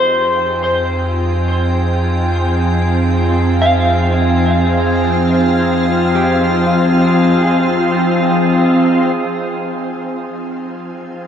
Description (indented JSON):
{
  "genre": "ambient",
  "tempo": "70 BPM",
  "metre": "3/4",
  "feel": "straight",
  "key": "F minor",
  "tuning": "A4 = 437 Hz",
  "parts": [
    { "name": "soft additive organ-like pad", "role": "sustained chords", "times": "0.0-11.3 s", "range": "F3 to Ab5", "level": "-16 LUFS", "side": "left 1 dB", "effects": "ensemble chorus, built-in reverb, shimmer reverb" },
    { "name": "clean electric guitar", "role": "arpeggios", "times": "0.0-9.1 s", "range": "G4 to F5", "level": "-20 LUFS", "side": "left 1 dB", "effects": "lush chorus, tape echo, shimmer reverb" },
    { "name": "deep rumbling drone", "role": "bass", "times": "0.4-9.1 s", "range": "F2", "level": "-19 LUFS", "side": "equal", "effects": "built-in reverb" },
    { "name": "bowed-like drone", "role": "drone", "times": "0.1-11.3 s", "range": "F3 to C4", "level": "-21 LUFS", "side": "right 1 dB", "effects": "built-in reverb" },
    { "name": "drifting glass-harmonics texture", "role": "texture", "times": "0.4-9.2 s", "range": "Ab4", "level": "-24 LUFS", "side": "right 3 dB", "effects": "chorus, built-in reverb, shimmer reverb" }
  ],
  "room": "wet cathedral reverb, RT60 6.2 s",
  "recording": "in a vast, echoing space, tape saturation",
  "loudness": "-12 LUFS",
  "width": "side -8 dB against mid",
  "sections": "0.0-9.2 A section; 9.2-11.3 B section",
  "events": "fade-in on ambient pad 0.0-9.2; fade-in on synth drone 0.0-9.2; fade-in on synth texture 0.0-9.2; fade-out on clean electric guitar 0.0-9.2; fade-out on synth drone 0.0-9.2",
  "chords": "0.0 Fm7",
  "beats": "0.65 | 1.51 2.36 3.20 | 4.04 4.88 5.73 | 6.57 7.43 8.30 | 9.16 10.02 10.87"
}